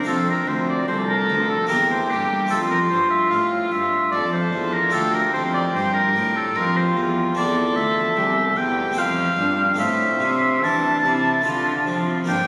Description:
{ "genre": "classical, baroque-style sonata movement with continuo", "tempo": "74 BPM", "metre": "3/4", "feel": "straight", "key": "F major", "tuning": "A4 = 440 Hz", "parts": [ { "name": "clear oboe", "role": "melody", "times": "0.0-12.5 s", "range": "G4 to A5", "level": "-23 LUFS", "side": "equal", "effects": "none" }, { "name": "dark violin", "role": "second line", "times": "0.0-12.5 s", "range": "C4 to A4", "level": "-26 LUFS", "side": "equal", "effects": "none" }, { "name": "harpsichord", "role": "accompaniment", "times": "0.0-12.5 s", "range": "C2 to A4", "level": "-32 LUFS", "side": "equal", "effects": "none" }, { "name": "rich cello", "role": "bass", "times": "0.0-12.5 s", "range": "C2 to F3", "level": "-28 LUFS", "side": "equal", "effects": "none" } ], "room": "wet cathedral reverb, RT60 4.8 s", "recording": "recorded on a phone in the room, studio reverb", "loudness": "-20 LUFS", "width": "mono", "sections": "0.0-12.5 A section", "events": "none", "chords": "0.1 F; 1.7 C7/E; 2.5 F; 4.9 Dm; 7.4 C; 9.0 F; 9.8 Am; 11.5 Dm", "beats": "| 0.07 0.89 1.70 | 2.51 3.32 4.13 | 4.94 5.75 6.56 | 7.37 8.17 8.98 | 9.79 10.64 11.47 | 12.29" }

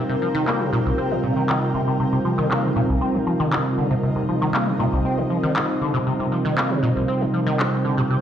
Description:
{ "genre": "acid house", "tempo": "118 BPM", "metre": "4/4", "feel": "straight", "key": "C minor", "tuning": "A4 = 440 Hz", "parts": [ { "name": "warm analog pad", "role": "sustained chords", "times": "0.0-8.2 s", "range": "C3 to C5", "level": "-23 LUFS", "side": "right 1 dB", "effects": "chorus" }, { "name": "liquid acid bass", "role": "riff", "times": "0.0-8.2 s", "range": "C2 to C4", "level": "-23 LUFS", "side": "equal", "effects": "phaser, tube saturation, analog chorus, tape echo" }, { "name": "granular cloud pad", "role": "texture", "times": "0.0-8.2 s", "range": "C4 to G5", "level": "-26 LUFS", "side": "right 1 dB", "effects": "built-in reverb" }, { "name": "electronic handclaps", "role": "drums", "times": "0.5-7.7 s", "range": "none", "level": "-25 LUFS", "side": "left 1 dB", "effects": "low-pass filter on cymbals, low-pass filter on snare, low-pass filter on room" } ], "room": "light reverb", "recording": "played on a big sound system in a bare room, stone room reverb", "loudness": "-19 LUFS", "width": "side -9 dB against mid", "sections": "0.0-8.2 A section", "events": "none", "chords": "0.0 Cm7", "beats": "0.47 0.98 1.49 | 2.00 2.51 3.02 3.52 | 4.03 4.54 5.05 5.56 | 6.07 6.57 7.08 7.59 | 8.10" }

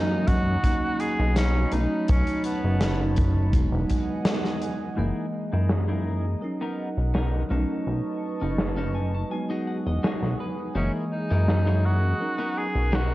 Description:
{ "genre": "vaporwave", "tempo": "83 BPM", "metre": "4/4", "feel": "swing 53% on 16ths", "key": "B major", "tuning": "A4 = 441 Hz", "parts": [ { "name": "warm tenor saxophone", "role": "melody", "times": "0.0-3.1, 10.8-13.1 s", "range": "B3 to G#4", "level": "-30 LUFS", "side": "equal", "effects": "tape echo" }, { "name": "bell-like tine electric piano", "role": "accompaniment", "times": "0.0-13.1 s", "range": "E3 to D#5", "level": "-30 LUFS", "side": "right 1 dB", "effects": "lush chorus, analog delay" }, { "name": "warbly tape-like pad", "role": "sustained chords", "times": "0.0-13.1 s", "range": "E3 to D#6", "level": "-36 LUFS", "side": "right 1 dB", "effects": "chorus, built-in reverb" }, { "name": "chorused synth bass", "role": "bass", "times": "0.0-13.1 s", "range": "E1 to F#2", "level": "-24 LUFS", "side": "equal", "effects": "none" }, { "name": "big rock drum kit", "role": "drums", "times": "0.3-13.1 s", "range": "hi-hat, snare drum", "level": "-30 LUFS", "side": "equal", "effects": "low-pass filter on hats, low-pass filter on snare, low-pass filter on room, gated reverb" }, { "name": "kick drum", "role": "drums", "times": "0.3-4.1 s", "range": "none", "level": "-24 LUFS", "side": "equal", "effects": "none" }, { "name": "clean electric guitar", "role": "riff", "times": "5.0-13.1 s", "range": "B3 to A5", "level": "-35 LUFS", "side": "left 2 dB", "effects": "wide subtle chorus, low-pass filter, analog delay" } ], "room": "light reverb, small room ambience", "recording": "cassette tape", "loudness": "-22 LUFS", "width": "side -17 dB against mid", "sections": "0.0-5.0 A section; 5.0-13.1 B section", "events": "break 4.3-5.0; band accent 4.3-4.6; clean electric guitar fill 8.6-10.8", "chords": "0.0 F#13; 0.6 Bmaj7; 1.7 B9; 3.5 Emaj9; 5.0 F#13; 6.4 Bmaj7; 7.5 B9; 9.3 Emaj9 (rootless); 10.8 F#13; 12.2 Bmaj7", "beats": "0.64 1.36 | 2.08 2.81 3.53 4.25 | 4.98 5.70 6.42 7.14 | 7.87 8.59 9.31 10.04 | 10.76 11.48 12.21 12.93" }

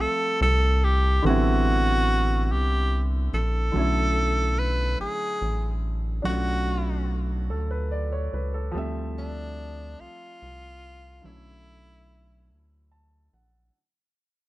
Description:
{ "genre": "slow six-eight R&B", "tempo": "48 BPM (dotted quarters)", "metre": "6/8", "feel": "straight", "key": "unclear", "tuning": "A4 = 441 Hz", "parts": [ { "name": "breathy tenor saxophone", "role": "melody", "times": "0.0-12.9 s", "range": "D4 to B4", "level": "-27 LUFS", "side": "equal", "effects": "ping-pong delay" }, { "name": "warm grand piano", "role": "accompaniment", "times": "0.0-13.8 s", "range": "D3 to A5", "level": "-29 LUFS", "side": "right 1 dB", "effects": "none" }, { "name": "rubbery square bass", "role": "bass", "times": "0.0-13.7 s", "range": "A1 to D2", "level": "-25 LUFS", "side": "equal", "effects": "none" } ], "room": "little or no reverb", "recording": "nothing above 10.9 kHz", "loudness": "-22 LUFS", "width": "side -18 dB against mid", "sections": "0.0-13.7 A section", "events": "fade-out 0.7-13.7; grand piano fill 12.5-13.7", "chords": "0.0 Dm11 (rootless); 1.2 Am11; 3.7 Bm11; 8.7 Dm11; 11.2 Bm11", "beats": "| 1.24 2.49 | 3.74 4.99 | 6.24 7.49 | 8.74 9.99 | 11.24 12.49" }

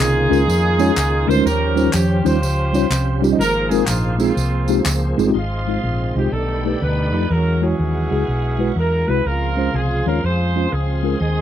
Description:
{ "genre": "uptempo gospel", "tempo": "123 BPM", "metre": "4/4", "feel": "swing 65% on 8ths", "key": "Ab major", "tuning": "A4 = 441 Hz", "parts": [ { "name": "warm horn section", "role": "melody", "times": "0.0-11.4 s", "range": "Bb3 to C5", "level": "-22 LUFS", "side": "right 2 dB", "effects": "none" }, { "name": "mellow tine electric piano", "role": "accompaniment", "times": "0.0-11.4 s", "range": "Ab2 to Eb5", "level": "-20 LUFS", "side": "left 1 dB", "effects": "medium stereo tremolo" }, { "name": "bright tonewheel organ", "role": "sustained chords", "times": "0.0-11.4 s", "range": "Eb3 to Eb6", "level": "-28 LUFS", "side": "right 2 dB", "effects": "chorus vibrato, slow rotary speaker" }, { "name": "hollow-body short-scale fingered electric bass", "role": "bass", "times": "0.0-11.4 s", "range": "G1 to F2", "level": "-20 LUFS", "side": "equal", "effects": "none" }, { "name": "handclaps and tambourine", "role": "percussion", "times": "0.0-5.3 s", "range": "none", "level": "-27 LUFS", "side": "left 1 dB", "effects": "none" }, { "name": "warm French horn section", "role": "sustained chords", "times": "5.3-11.4 s", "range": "C#3 to E4", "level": "-30 LUFS", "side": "left 2 dB", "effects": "none" } ], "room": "little or no reverb", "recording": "dry, close 1970s-style studio recording", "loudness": "-16 LUFS", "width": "side -10 dB against mid", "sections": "0.0-5.4 A section; 5.4-11.4 B section", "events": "none", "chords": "0.0 Db69; 1.5 Eb13; 3.4 Ab69; 5.4 Ab6; 6.3 B7alt; 7.3 E69; 9.3 Dbmaj7", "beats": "0.00 0.49 0.97 | 1.46 1.95 2.43 2.92 | 3.40 3.89 4.38 4.87 | 5.35 5.84 6.33 6.82 | 7.31 7.80 8.29 8.78 | 9.26 9.75 10.24 10.73 | 11.21" }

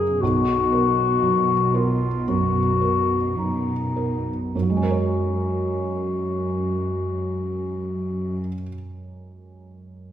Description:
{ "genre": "cinematic", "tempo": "50-61 BPM", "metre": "4/4", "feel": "rubato", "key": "F# major", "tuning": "A4 = 439 Hz", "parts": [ { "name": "dark clarinet", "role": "second line", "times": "0.0-8.4 s", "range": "D#4 to G#4", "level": "-24 LUFS", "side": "left 5 dB", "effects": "none" }, { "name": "felt-muted upright piano", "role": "accompaniment", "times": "0.0-10.1 s", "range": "B1 to C#5", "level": "-25 LUFS", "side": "right 3 dB", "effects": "none" }, { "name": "warm studio cello section", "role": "bass", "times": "0.0-8.4 s", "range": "F#2 to B2", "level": "-27 LUFS", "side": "equal", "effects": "none" } ], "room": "wet recital hall reverb, RT60 1.3 s", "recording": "heard from further back in the room", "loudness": "-20 LUFS", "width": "side -10 dB against mid", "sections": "0.0-4.5 A section; 4.5-9.2 B section", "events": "slowing down 0.0-4.5", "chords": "0.2 Bmaj7; 4.5 F#add9", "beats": "| 0.21 1.22 2.26 3.36 | 4.53 5.70 6.87 8.03" }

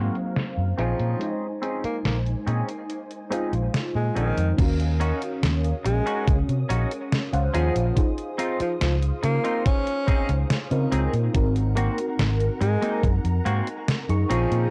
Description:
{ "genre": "vaporwave", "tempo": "71 BPM", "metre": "4/4", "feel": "straight", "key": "unclear", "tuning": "A4 = 440 Hz", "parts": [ { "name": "mellow FM electric piano", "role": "accompaniment", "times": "0.0-14.7 s", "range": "Gb3 to Db6", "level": "-33 LUFS", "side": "equal", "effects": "phaser, analog chorus, cassette tape, tape echo" }, { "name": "soft string machine", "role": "sustained chords", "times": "0.0-14.7 s", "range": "Gb3 to Eb6", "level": "-40 LUFS", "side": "equal", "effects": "ensemble chorus" }, { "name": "semi-hollow electric guitar", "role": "riff", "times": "0.0-14.7 s", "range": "Bb3 to Ab4", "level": "-33 LUFS", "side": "equal", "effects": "analog chorus, low-pass filter, tape echo" }, { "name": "fingered electric bass", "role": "bass", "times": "0.0-14.7 s", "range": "Ab1 to Db3", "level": "-26 LUFS", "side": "equal", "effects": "none" }, { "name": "detuned 8-bit digital drum machine", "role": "drums", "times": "0.2-14.7 s", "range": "crash cymbal, hi-hat, snare drum", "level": "-30 LUFS", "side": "equal", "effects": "none" }, { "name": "breathy tenor saxophone", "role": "melody", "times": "0.8-14.7 s", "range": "Eb3 to Db4", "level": "-32 LUFS", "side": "equal", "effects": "tape echo" }, { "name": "electronic kick drum", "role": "drums", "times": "4.6-13.2 s", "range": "none", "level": "-24 LUFS", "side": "equal", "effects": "none" } ], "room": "little or no reverb", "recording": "dry, gritty hardware recording, cassette tape, low-pass filter", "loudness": "-24 LUFS", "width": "mono", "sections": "0.0-4.6 A section; 4.6-14.7 B section", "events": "none", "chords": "0.0 Ab9 (rootless); 0.8 Bbm11; 4.6 Ebm7; 8.0 Dbmaj9; 11.3 Ab9", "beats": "0.36 | 1.21 2.05 2.90 3.74 | 4.59 5.43 6.28 7.12 | 7.97 8.81 9.66 10.50 | 11.35 12.19 13.04 13.88" }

